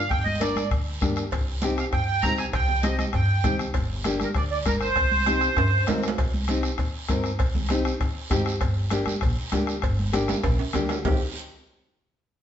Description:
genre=latin, cumbia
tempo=197 BPM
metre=4/4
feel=straight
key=C minor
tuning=A4 = 440 Hz
part: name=accordion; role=melody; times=0.0-5.8 s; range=Bb4 to Bb5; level=-25 LUFS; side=right 3 dB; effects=light tremolo tuning
part: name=upright bass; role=bass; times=0.0-11.2 s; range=G1 to G2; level=-27 LUFS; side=equal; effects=none
part: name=bombo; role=percussion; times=0.1-11.1 s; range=none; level=-28 LUFS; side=left 2 dB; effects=none
part: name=congas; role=percussion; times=0.1-11.1 s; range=none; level=-32 LUFS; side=right 2 dB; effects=none
part: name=guiro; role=percussion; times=0.1-11.1 s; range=none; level=-38 LUFS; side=right 4 dB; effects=none
part: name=nylon-string guitar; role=accompaniment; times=0.4-11.2 s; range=Bb3 to Eb5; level=-29 LUFS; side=left 2 dB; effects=none
part: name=cowbell and timbales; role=percussion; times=1.3-11.1 s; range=none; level=-34 LUFS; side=right 5 dB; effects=none
room=wet stone room reverb, RT60 1.0 s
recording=band playing live in one room, nothing above 7.8 kHz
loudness=-22 LUFS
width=side -9 dB against mid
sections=0.0-6.2 A section; 6.2-11.1 B section; 11.1-12.3 C section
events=drum fill 5.6-6.2, 10.3-11.1; nylon-string guitar fill 5.7-6.2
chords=0.0 Gm; 1.3 Cm; 3.8 Gm; 5.0 Cm; 8.6 Gm; 11.1 Cm

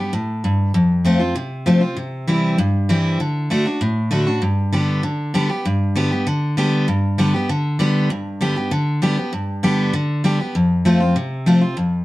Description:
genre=bluegrass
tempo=196 BPM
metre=4/4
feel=straight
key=G mixolydian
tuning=A4 = 441 Hz
part: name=picked steel-string acoustic guitar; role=solo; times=0.0-12.0 s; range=F2 to G4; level=-16 LUFS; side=equal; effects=none
room=moderate studio reverb, RT60 0.6 s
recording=dark, warm production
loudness=-16 LUFS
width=side -18 dB against mid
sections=0.0-5.7 A section; 5.7-12.0 B section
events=none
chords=0.0 G; 0.7 F; 2.0 C; 3.2 D; 4.4 G; 10.5 F

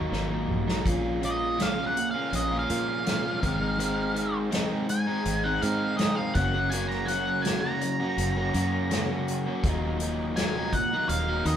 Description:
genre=psychedelic rock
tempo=82 BPM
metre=4/4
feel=straight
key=Eb dorian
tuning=A4 = 440 Hz
part: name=mellow tonewheel organ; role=sustained chords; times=0.0-11.6 s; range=Bb3 to Eb5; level=-38 LUFS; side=right 3 dB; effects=slow rotary speaker, chorus vibrato
part: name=overdriven electric guitar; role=riff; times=0.0-11.6 s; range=Eb2 to Gb4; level=-29 LUFS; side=equal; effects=none
part: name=fingered electric bass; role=bass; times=0.0-11.6 s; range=Eb1 to Bb2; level=-31 LUFS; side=equal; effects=none
part: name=soft-mallet drum kit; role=drums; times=0.1-11.6 s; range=hi-hat, kick drum, snare drum, toms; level=-30 LUFS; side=equal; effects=none
part: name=octave-fuzz lead guitar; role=melody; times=1.2-11.6 s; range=Eb5 to Bb5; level=-30 LUFS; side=equal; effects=distortion
room=wet stone room reverb, RT60 1.6 s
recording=band playing live in one room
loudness=-24 LUFS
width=side -9 dB against mid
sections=0.0-11.6 A section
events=lead electric guitar solo 0.0-11.6; drum fill 0.1-0.9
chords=0.0 Ebm; 0.9 Bbm7; 3.4 Ab; 6.4 Gb; 9.6 Ebm

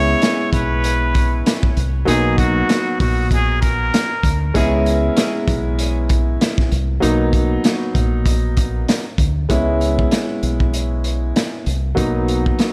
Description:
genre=hip hop, boom-bap hip-hop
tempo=97 BPM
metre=4/4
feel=swing 58% on 16ths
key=C# dorian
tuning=A4 = 439 Hz
part: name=trumpet with straight mute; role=melody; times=0.0-4.5 s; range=F#4 to C#5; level=-25 LUFS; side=equal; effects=tape echo
part: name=dark upright piano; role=accompaniment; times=0.0-12.7 s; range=F#3 to E4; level=-23 LUFS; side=equal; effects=none
part: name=deep dub fingered electric bass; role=bass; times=0.0-12.5 s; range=A#1 to D2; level=-22 LUFS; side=equal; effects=none
part: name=crunchy breakbeat drum kit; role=drums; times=0.2-12.7 s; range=hi-hat, kick drum, snare drum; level=-21 LUFS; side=equal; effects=none
part: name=clear horn section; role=stabs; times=4.5-4.7 s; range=E3 to G#4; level=-36 LUFS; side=equal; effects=tape echo
room=light reverb, small room ambience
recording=none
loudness=-18 LUFS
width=mono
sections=0.0-9.5 A section; 9.5-12.7 B section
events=none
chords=0.0 C#m7; 2.1 Bmaj7; 4.5 C#m7; 7.0 Bmaj7; 9.5 C#m7; 12.0 Bmaj7

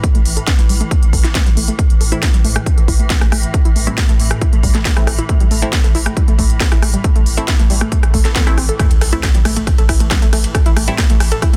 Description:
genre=driving peak-time techno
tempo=137 BPM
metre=4/4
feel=straight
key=A minor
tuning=A4 = 440 Hz
part: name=warbly dusty pluck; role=riff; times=0.0-11.6 s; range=G3 to A4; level=-26 LUFS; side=equal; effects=chorus, tube saturation, sidechain pumping, dub echo
part: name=swarming drone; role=drone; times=0.0-11.6 s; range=A2 to E3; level=-29 LUFS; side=equal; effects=built-in reverb, sidechain pumping
part: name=electronic kick drum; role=drums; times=0.0-11.5 s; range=none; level=-16 LUFS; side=equal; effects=studio reverb
part: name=techno drum kit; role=drums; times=0.0-11.6 s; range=hi-hat, ride cymbal, rim click, snare drum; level=-23 LUFS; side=equal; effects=sidechain pumping on hats, studio reverb, sidechain pumping on cymbals
part: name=saturated sub bass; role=bass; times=0.1-11.6 s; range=A1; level=-20 LUFS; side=equal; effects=none
part: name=filtered dub chord stab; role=stabs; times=2.1-11.0 s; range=A3 to E4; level=-29 LUFS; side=equal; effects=phaser, sidechain pumping, dub echo
part: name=swell and impact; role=sound effects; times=8.1-10.5 s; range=none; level=-28 LUFS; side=equal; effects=none
room=digital ambience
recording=dense, heavily limited modern master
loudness=-14 LUFS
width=mono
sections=0.0-8.8 A section; 8.8-11.6 B section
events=filter sweep on synth arpeggio sound 0.0-8.8; drop 8.8-11.6; impact 8.8-10.5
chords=0.0 A5

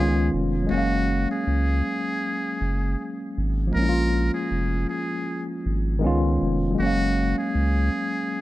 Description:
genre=lo-fi hip hop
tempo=79 BPM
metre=4/4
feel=swing 57% on 16ths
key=F# major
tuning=A4 = 440 Hz
part: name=trumpet with metal mute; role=melody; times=0.0-8.4 s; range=F#4 to A#4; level=-30 LUFS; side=equal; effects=plate reverb
part: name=barky tine electric piano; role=accompaniment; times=0.0-8.4 s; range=D#3 to E#5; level=-24 LUFS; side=left 1 dB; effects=medium stereo tremolo, cassette tape
part: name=saturated sub bass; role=bass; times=0.0-7.9 s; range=E#1 to C#2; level=-24 LUFS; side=equal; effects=none
room=light reverb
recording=dark, warm production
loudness=-21 LUFS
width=side -16 dB against mid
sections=0.0-8.4 A section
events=none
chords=0.0 C#7; 0.7 F#maj9; 3.7 A#m7; 6.0 C#7; 6.8 F#maj9

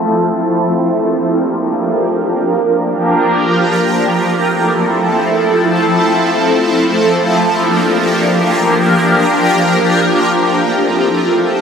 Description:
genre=hip hop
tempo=free time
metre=none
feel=none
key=F major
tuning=A4 = 440 Hz
part: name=shimmering ambient pad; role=solo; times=0.0-11.6 s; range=F3 to Bb4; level=-11 LUFS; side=equal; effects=chorus, built-in reverb, phaser
room=moderate huge ambient reverb, RT60 4.9 s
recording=low-pass filter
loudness=-11 LUFS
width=side -6 dB against mid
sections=0.0-3.7 A section; 3.7-11.6 B section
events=filter sweep 0.0-3.7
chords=0.0 Fmaj7; 0.5 Bb6; 3.7 Fmaj7; 7.0 Bb6; 10.2 Fmaj7

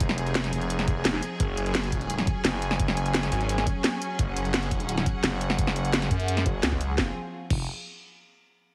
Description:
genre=dark technical drum and bass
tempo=172 BPM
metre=4/4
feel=straight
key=unclear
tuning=A4 = 440 Hz
part: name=clear studio string section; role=sustained chords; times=0.0-7.1 s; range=F3 to Ab5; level=-34 LUFS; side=equal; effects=vintage 12-bit sampler grit, sidechain pumping
part: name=growling FM bass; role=bass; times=0.0-6.4 s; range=F1 to Gb2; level=-31 LUFS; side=equal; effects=none
part: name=drum and bass drum kit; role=drums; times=0.0-7.6 s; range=crash cymbal, hi-hat, snare drum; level=-30 LUFS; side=equal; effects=none
part: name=electronic kick drum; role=drums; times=0.0-7.6 s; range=none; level=-30 LUFS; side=equal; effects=none
part: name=phased detuned saw bass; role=bass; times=1.4-7.7 s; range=F1 to Db2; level=-32 LUFS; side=equal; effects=phaser, sidechain pumping
room=light reverb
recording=heavily compressed radio sound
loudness=-27 LUFS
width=mono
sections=0.0-7.0 A section; 7.0-8.4 B section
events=drop 0.0-7.0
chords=0.0 Fm7; 1.4 Gbsus2; 7.0 N.C.

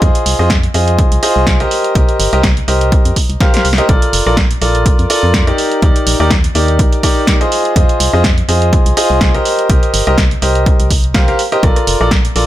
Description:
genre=piano house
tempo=124 BPM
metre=4/4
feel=swing 55% on 16ths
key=unclear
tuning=A4 = 439 Hz
part: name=clear baby grand piano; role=riff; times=0.0-12.5 s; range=Eb4 to F5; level=-14 LUFS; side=equal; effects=sidechain pumping, digital delay
part: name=organ-like FM bass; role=bass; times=0.0-12.5 s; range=F1 to F2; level=-15 LUFS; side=equal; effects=sidechain pumping
part: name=electronic kick drum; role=drums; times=0.0-12.2 s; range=none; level=-12 LUFS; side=equal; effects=none
part: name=punchy analog drum machine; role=drums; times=0.0-12.5 s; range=hi-hat, rim click, snare drum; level=-18 LUFS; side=right 2 dB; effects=none
room=digital ambience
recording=none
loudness=-10 LUFS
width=side -13 dB against mid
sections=0.0-12.5 A section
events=drum fill 3.4-3.9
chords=0.0 Fm7; 1.7 Cm7; 3.9 Bbmaj7; 5.6 Ebmaj7; 7.5 Fm7; 9.5 Cm7; 11.6 Bbmaj7

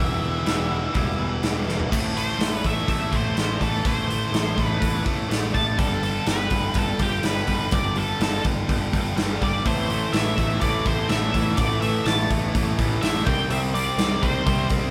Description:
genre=quiet-loud alternative rock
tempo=124 BPM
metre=4/4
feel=straight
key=A minor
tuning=A4 = 440 Hz
part: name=octave-fuzz lead guitar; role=melody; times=0.0-14.7 s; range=G4 to A5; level=-30 LUFS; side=equal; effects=distortion
part: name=twelve-string electric guitar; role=arpeggios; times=0.0-14.9 s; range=E2 to E4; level=-33 LUFS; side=equal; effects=none
part: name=heavy high-gain guitar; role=riff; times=0.0-14.9 s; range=E2 to C4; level=-31 LUFS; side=equal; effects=distortion
part: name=overdriven picked electric bass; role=bass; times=0.0-14.9 s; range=E1 to C2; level=-30 LUFS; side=equal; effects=none
part: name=big rock drum kit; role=drums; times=0.5-14.8 s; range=crash cymbal, hi-hat, kick drum, snare drum, toms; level=-27 LUFS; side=equal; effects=none
part: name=crunchy overdriven guitar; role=riff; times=9.7-14.9 s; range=A2 to C4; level=-32 LUFS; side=equal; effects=none
room=light reverb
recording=band playing live in one room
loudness=-23 LUFS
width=mono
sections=0.0-1.9 A section; 1.9-14.9 B section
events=drum fill 1.7; lead electric guitar solo 1.9-14.9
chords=0.0 Em; 1.9 Am; 5.8 Gadd9; 9.7 Am; 13.3 C5

